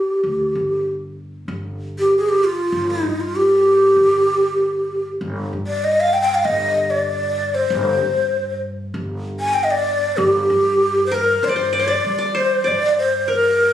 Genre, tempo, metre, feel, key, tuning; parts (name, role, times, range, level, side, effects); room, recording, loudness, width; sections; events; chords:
Arabic maqam ensemble; 96 BPM; 4/4; straight; G minor; A4 = 441 Hz
breathy low ney; melody; 0.0-13.7 s; Eb4 to Ab5; -16 LUFS; equal
qanun; second line; 0.0-0.8, 11.1-13.7 s; Bb4 to D5; -22 LUFS; equal
upright bass; bass; 0.2-13.7 s; G1 to G3; -29 LUFS; equal
light reverb; recorded on a phone in the room, studio reverb; -16 LUFS; side -11 dB against mid
0.0-1.5 A section; 1.5-11.4 B section; 11.4-13.7 C section